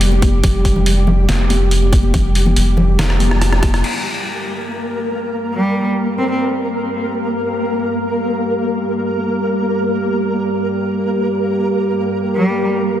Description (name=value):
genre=deep dubstep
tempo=141 BPM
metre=4/4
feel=half-time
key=G minor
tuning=A4 = 440 Hz
part: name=dark analog pad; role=sustained chords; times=0.0-13.0 s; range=G3 to G4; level=-22 LUFS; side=right 1 dB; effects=wide subtle chorus
part: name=soft dub sub bass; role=bass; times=0.0-3.8 s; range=F1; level=-14 LUFS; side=equal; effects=none
part: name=trip hop sampler-style drum kit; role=drums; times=0.0-3.9 s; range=crash cymbal, hi-hat, rim click, snare drum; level=-21 LUFS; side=equal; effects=none
part: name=flickering grainy texture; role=texture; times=0.0-13.0 s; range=G3 to Bb4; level=-20 LUFS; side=equal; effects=built-in reverb
part: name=congas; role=percussion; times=0.1-3.7 s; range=none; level=-22 LUFS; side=left 3 dB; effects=dub echo
part: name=electronic kick drum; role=drums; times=0.2-3.7 s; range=none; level=-15 LUFS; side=equal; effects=overdrive
part: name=rich cello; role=melody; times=5.5-6.4, 12.3-12.7 s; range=G3 to C4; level=-20 LUFS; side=equal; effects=dub echo
room=light reverb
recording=dense, heavily limited modern master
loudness=-14 LUFS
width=side -11 dB against mid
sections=0.0-3.8 A section; 3.8-13.0 B section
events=drum fill 3.0-3.8; band accent 3.7; filter sweep on analog synth pad 3.8-13.0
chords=0.0 Fsus2; 3.8 Gm